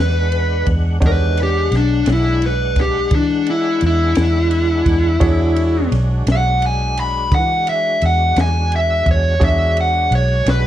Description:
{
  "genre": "slow blues",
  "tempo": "57 BPM (dotted quarters)",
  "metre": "12/8",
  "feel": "straight",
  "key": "E mixolydian",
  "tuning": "A4 = 440 Hz",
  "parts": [
    { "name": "dark smooth lead guitar", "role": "melody", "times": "0.0-10.7 s", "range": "D4 to B5", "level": "-17 LUFS", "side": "left 1 dB", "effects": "overdrive" },
    { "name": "warm grand piano", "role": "accompaniment", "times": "0.0-10.7 s", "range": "G#3 to C#6", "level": "-28 LUFS", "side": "right 3 dB", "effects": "none" },
    { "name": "tonewheel organ", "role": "sustained chords", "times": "0.0-10.7 s", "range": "D#3 to F#5", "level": "-29 LUFS", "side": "equal", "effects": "slow rotary speaker, overdrive, chorus vibrato" },
    { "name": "vintage muted fingered electric bass", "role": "bass", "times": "0.0-10.7 s", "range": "B1 to E3", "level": "-17 LUFS", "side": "equal", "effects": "none" },
    { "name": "compact cocktail drum kit", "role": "drums", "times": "0.3-10.6 s", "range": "kick drum, ride cymbal, snare drum", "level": "-22 LUFS", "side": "equal", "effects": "none" }
  ],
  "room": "small room ambience",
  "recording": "dark, warm production",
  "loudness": "-14 LUFS",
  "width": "side -12 dB against mid",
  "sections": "0.0-10.7 A section",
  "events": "lead electric guitar solo 0.0-10.7",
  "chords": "0.0 E13"
}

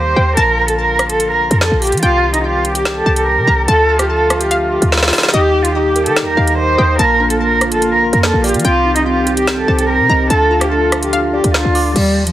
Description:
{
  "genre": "hip hop, drill",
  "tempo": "145 BPM",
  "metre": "4/4",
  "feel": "half-time",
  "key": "D phrygian",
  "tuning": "A4 = 440 Hz",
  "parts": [
    { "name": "dark cello", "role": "melody", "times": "0.0-12.3 s", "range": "F3 to C5", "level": "-14 LUFS", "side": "right 1 dB", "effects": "low-pass filter, digital delay" },
    { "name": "hollow square pluck", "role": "second line", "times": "0.0-11.9 s", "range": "Eb5 to Bb5", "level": "-23 LUFS", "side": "left 3 dB", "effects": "chorus, digital delay" },
    { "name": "warm brass ensemble", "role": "sustained chords", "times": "0.0-11.9 s", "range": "D3 to G4", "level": "-23 LUFS", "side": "equal", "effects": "none" },
    { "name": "short 808-style bass", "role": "bass", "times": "0.0-12.3 s", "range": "A1 to F3", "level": "-18 LUFS", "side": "equal", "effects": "none" },
    { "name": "drill drum kit", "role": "drums", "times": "0.4-12.3 s", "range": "crash cymbal, hi-hat, rim click, snare drum", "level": "-17 LUFS", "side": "equal", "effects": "none" },
    { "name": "mellow tine electric piano", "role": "accompaniment", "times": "5.3-12.0 s", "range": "Bb3 to Eb6", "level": "-19 LUFS", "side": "equal", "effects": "medium stereo tremolo, low-pass filter" }
  ],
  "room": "digital ambience",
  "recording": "dense, heavily limited modern master, vinyl crackle",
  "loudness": "-11 LUFS",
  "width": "side -13 dB against mid",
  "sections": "0.0-12.0 A section",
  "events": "drum fill 4.9-5.3",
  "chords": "0.4 Bb; 2.0 Cm; 3.7 Dm; 5.3 Eb; 7.0 Bb; 8.6 Cm; 10.3 Dm"
}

